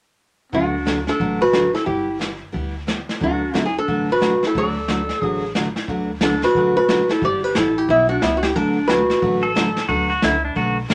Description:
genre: country, western swing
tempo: 180 BPM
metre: 4/4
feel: swing 62% on 8ths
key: D major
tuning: A4 = 435 Hz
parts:
  - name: archtop guitar, miked and amplified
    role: melody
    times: 0.5-9.5 s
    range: E4 to D5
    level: -23 LUFS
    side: equal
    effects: none
  - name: breathy clarinet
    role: second line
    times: 0.5-9.5 s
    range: B3 to A4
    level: -23 LUFS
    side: equal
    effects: none
  - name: picked steel-string acoustic guitar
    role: accompaniment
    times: 0.5-10.9 s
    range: D3 to B4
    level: -27 LUFS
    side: equal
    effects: none
  - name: upright bass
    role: bass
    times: 0.5-10.9 s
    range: G1 to D2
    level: -32 LUFS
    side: equal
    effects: none
  - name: vintage brush drum kit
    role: drums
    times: 0.5-10.9 s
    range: brushed snare drum, hi-hat, kick drum, snare drum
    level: -27 LUFS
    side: equal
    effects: none
  - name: pedal steel guitar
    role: second line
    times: 9.4-10.8 s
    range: D4 to A4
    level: -23 LUFS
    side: equal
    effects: none
room: moderate club reverb, RT60 0.6 s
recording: none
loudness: -20 LUFS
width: mono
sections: 0.5-5.9 A section; 5.9-10.9 B section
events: none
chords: 0.5 D6; 1.9 G6; 3.2 D6; 7.2 G6; 8.6 D6

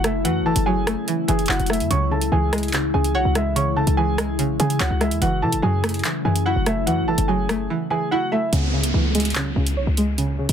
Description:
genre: hip hop, drill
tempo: 145 BPM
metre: 4/4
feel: half-time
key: C# minor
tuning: A4 = 440 Hz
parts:
  - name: warm baby grand piano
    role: melody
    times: 0.0-8.5 s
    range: E4 to C#6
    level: -25 LUFS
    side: right 2 dB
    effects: ping-pong delay
  - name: string-like resonator pluck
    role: accompaniment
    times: 0.0-10.5 s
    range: C#3 to C#5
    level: -24 LUFS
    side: right 1 dB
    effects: chorus, low-pass filter
  - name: glassy FM pad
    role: sustained chords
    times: 0.0-8.5 s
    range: C#3 to E4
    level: -27 LUFS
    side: left 4 dB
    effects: ensemble chorus, built-in reverb
  - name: short 808-style bass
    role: bass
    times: 0.0-10.5 s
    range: F#1 to C#3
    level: -23 LUFS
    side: equal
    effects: none
  - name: drill drum kit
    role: drums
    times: 0.0-10.5 s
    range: handclaps, hi-hat, rim click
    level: -25 LUFS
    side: right 1 dB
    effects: none
  - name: downlifter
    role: sound effects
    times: 8.5-10.5 s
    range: none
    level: -27 LUFS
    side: right 3 dB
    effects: none
room: little or no reverb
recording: dense, heavily limited modern master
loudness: -18 LUFS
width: side -8 dB against mid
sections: 0.0-8.5 A section; 8.5-10.5 B section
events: drums muted 7.7-8.5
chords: 0.0 F#m7; 1.9 C#m; 5.2 F#m7; 8.5 C#m

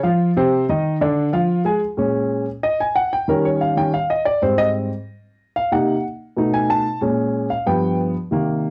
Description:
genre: jazz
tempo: 185 BPM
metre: 4/4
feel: straight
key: unclear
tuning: A4 = 440 Hz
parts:
  - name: warm concert grand piano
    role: solo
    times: 0.0-8.7 s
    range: G2 to A5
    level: -20 LUFS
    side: equal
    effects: cassette tape
room: moderate studio reverb, RT60 0.5 s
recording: home recording on cassette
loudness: -20 LUFS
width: mono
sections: 0.0-1.8 A section; 1.8-8.7 B section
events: grand piano solo 1.8-8.7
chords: 0.0 Dbmaj7 (rootless); 0.5 Cmadd9; 1.2 Ddim; 1.8 Bbm7; 3.1 Eb7; 4.4 Abmaj7; 5.7 Cm7b5; 6.4 B7; 7.0 Bbm7; 7.7 G7

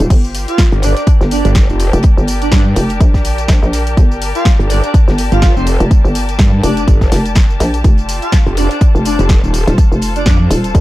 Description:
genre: bass house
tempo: 124 BPM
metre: 4/4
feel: swing 56% on 16ths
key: G minor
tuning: A4 = 439 Hz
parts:
  - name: hollow knocking FM bass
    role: bass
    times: 0.0-10.8 s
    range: Eb1 to Bb1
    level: -15 LUFS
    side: equal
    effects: tube saturation, sidechain pumping
  - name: house drum kit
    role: drums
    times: 0.0-10.8 s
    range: crash cymbal, hi-hat, snare drum, tambourine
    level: -22 LUFS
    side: equal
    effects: none
  - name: muted studio string section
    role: texture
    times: 0.0-10.8 s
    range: F4 to A5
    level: -23 LUFS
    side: left 3 dB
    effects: sidechain pumping
  - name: damped 70s drum kit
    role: drums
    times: 0.1-10.8 s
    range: hi-hat, snare drum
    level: -32 LUFS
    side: left 3 dB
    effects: none
  - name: electronic kick drum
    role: drums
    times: 0.1-10.8 s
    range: none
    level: -10 LUFS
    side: equal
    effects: none
  - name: airy dreamy lead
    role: melody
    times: 0.5-10.4 s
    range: C4 to F4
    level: -21 LUFS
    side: right 1 dB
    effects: chorus, dub echo
  - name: growl bass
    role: bass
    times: 0.7-10.5 s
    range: Eb1 to G2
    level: -13 LUFS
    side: equal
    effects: chorus, sidechain pumping
room: small room ambience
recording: dark, warm production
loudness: -9 LUFS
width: side -17 dB against mid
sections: 0.0-10.8 A section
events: none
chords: 0.1 Gmadd9; 7.8 F

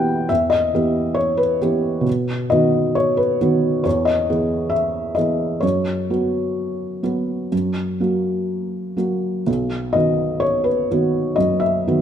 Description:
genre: classical, romantic nocturne for solo piano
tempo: 59-70 BPM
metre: 4/4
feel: rubato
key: B major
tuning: A4 = 440 Hz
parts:
  - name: felt-muted upright piano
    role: solo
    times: 0.0-12.0 s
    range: B1 to G5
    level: -17 LUFS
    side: equal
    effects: none
room: moderate recital hall reverb, RT60 1.6 s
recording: close, detailed microphones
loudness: -17 LUFS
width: side -9 dB against mid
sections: 0.0-12.0 A section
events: none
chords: 0.0 Em; 2.1 B; 3.9 E; 5.6 F#sus4; 7.5 F#; 9.5 B

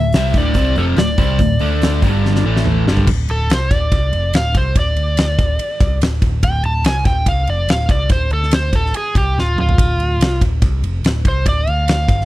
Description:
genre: blues rock power trio and southern rock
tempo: 143 BPM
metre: 4/4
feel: straight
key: D minor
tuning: A4 = 443 Hz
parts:
  - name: overdriven slide guitar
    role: melody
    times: 0.0-12.2 s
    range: F4 to A5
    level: -21 LUFS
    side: right 1 dB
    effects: none
  - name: distorted electric guitar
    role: riff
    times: 0.0-3.1 s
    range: D2 to D4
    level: -18 LUFS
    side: equal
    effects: distortion
  - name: overdriven picked electric bass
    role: bass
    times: 0.0-12.2 s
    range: D1 to D2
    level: -18 LUFS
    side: equal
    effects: none
  - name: huge arena drum kit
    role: drums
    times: 0.1-12.2 s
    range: crash cymbal, hi-hat, kick drum, ride cymbal, snare drum, toms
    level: -17 LUFS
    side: equal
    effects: none
room: studio ambience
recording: dry, close 1970s-style studio recording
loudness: -13 LUFS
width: side -16 dB against mid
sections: 0.0-3.1 A section; 3.1-12.2 B section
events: drum fill 2.2-3.1, 9.4-9.8; electric slide guitar solo 3.1-12.2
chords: 0.0 Dm; 2.0 G5; 2.5 A5; 2.9 G5; 3.1 Dm

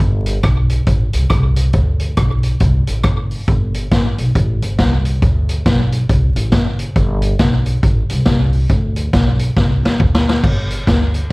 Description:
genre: ska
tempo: 138 BPM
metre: 4/4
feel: swing 61% on 8ths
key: G major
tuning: A4 = 440 Hz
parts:
  - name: upright bass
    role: bass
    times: 0.0-11.2 s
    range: F#1 to E2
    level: -16 LUFS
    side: equal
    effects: none
  - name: street-band drum kit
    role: drums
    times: 0.0-11.2 s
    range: crash cymbal, hi-hat, kick drum, rim click, snare drum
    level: -15 LUFS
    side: equal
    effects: slapback echo
room: light reverb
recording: vinyl crackle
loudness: -13 LUFS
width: side -25 dB against mid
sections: 0.0-10.4 A section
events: drum fill 9.6-10.4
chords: none

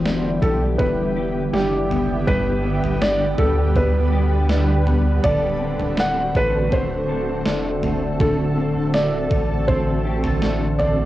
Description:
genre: dream pop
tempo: 81 BPM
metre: 4/4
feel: straight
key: unclear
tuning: A4 = 440 Hz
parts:
  - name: shimmering ambient pad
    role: sustained chords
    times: 0.0-11.1 s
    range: D3 to B4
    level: -24 LUFS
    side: right 1 dB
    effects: chorus, built-in reverb, tremolo
  - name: mellow electric guitar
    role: arpeggios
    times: 0.0-11.1 s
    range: G2 to A4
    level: -26 LUFS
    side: left 4 dB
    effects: ensemble chorus, analog delay
  - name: saturated sub bass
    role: bass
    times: 0.0-11.1 s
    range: D1 to D2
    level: -23 LUFS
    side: right 1 dB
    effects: none
  - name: gated 80s digital drum machine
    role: drums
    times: 0.1-11.0 s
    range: kick drum, snare drum, toms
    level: -24 LUFS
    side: right 1 dB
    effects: gated reverb, gated reverb snare, overdrive, cassette tape
  - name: felt-muted upright piano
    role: melody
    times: 0.4-11.1 s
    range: G4 to F#5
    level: -23 LUFS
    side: equal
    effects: cassette tape, analog delay
room: light reverb, digital ambience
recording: home recording on cassette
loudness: -17 LUFS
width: side -14 dB against mid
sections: 0.0-11.1 A section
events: none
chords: 0.0 Em7; 2.3 G; 5.2 D7

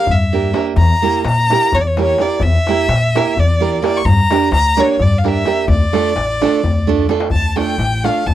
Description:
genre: balkan folk, Balkan wedding band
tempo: 257 BPM (eighths)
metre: 7/8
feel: straight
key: D harmonic minor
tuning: A4 = 440 Hz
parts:
  - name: rich violin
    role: melody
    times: 0.0-8.3 s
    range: C#5 to C#6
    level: -17 LUFS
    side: left 1 dB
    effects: none
  - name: nylon-string guitar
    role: accompaniment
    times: 0.0-8.2 s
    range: A3 to Bb4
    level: -17 LUFS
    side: right 9 dB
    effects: none
  - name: upright bass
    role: bass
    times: 0.1-8.3 s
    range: A1 to Bb2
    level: -17 LUFS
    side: left 1 dB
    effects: none
  - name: darbuka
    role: percussion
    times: 0.1-8.3 s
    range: none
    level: -19 LUFS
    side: left 3 dB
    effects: none
room: light reverb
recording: dry, close 1970s-style studio recording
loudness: -12 LUFS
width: side -12 dB against mid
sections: 0.0-7.3 A section; 7.3-8.3 B section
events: drum fill 6.8-7.3; violin solo 7.3-8.3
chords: 0.0 Gm; 0.8 Edim; 4.0 Gm; 5.7 Dm

